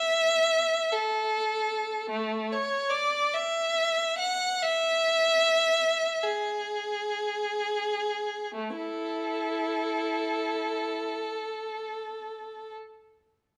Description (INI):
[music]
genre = classical, free, expressive piece for unaccompanied violin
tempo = 19-51 BPM (dotted quarters)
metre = 6/8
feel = rubato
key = A major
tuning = A4 = 438 Hz
[part]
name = clear violin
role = solo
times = 0.0-12.7 s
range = A3 to F#5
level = -28 LUFS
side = equal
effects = none
[sound]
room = moderate recital hall reverb, RT60 1.4 s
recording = close, detailed microphones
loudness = -28 LUFS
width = mono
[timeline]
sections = 0.0-8.5 A section; 8.5-12.2 B section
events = slowing down 0.9-8.5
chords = none